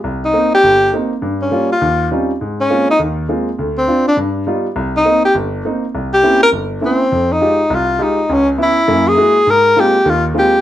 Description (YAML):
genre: jazz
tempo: 204 BPM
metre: 4/4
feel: swing 60% on 8ths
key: Ab major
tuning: A4 = 440 Hz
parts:
  - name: clear grand piano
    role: accompaniment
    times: 0.0-10.5 s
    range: G1 to G4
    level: -17 LUFS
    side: equal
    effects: none
  - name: breathy tenor saxophone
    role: melody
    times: 0.2-10.6 s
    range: C4 to Bb4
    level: -12 LUFS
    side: left 1 dB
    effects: none
room: moderate studio reverb, RT60 0.5 s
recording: none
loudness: -12 LUFS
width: side -12 dB against mid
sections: 0.0-2.4 A section; 2.4-10.6 B section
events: tenor saxophone solo 2.4-10.6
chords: 0.0 Cm7; 1.2 Gm7b5; 1.8 Eb13; 2.4 Ab69; 3.6 Dm7; 4.2 Gaug7; 4.8 Cm7; 5.9 C7b9; 7.1 Fm9; 8.3 Dbm7; 8.9 Gb9; 9.5 Ab69